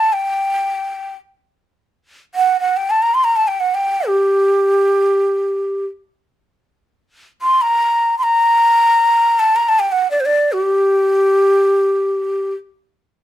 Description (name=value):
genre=Persian modal ensemble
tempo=free time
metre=none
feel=none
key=G avaz esfahan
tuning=A4 = 441 Hz
part: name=breathy ney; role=solo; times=0.0-12.5 s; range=G4 to C6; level=-13 LUFS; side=equal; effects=none
room=moderate studio reverb, RT60 0.6 s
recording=none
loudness=-13 LUFS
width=side -13 dB against mid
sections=0.0-6.9 A section; 6.9-13.2 A section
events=none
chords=none